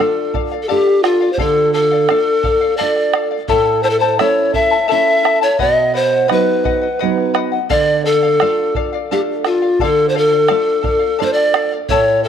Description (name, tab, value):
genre	andean folk, Andean ensemble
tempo	86 BPM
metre	3/4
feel	straight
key	D harmonic minor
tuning	A4 = 445 Hz
part	breathy hollow pan flute	melody	0.0-12.3 s	F4 to E5	-14 LUFS	left 1 dB	slapback echo
part	charango	accompaniment	0.0-12.3 s	E4 to A5	-21 LUFS	left 10 dB	none
part	nylon-string guitar	accompaniment	0.0-12.3 s	A2 to F4	-22 LUFS	right 10 dB	none
part	bombo	percussion	0.3-12.1 s	none	-21 LUFS	right 5 dB	none
room	moderate plate reverb, RT60 3.4 s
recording	1960s-style stereo with parts hard left and right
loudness	-12 LUFS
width	side -8 dB against mid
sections	0.0-12.3 A section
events	none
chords	0.0 Dm; 3.5 A; 5.6 B; 7.7 Dm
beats	0.69 | 1.39 2.09 2.79 | 3.49 4.19 4.89 | 5.59 6.29 6.99 | 7.69 8.39 9.10 | 9.80 10.50 11.20 | 11.90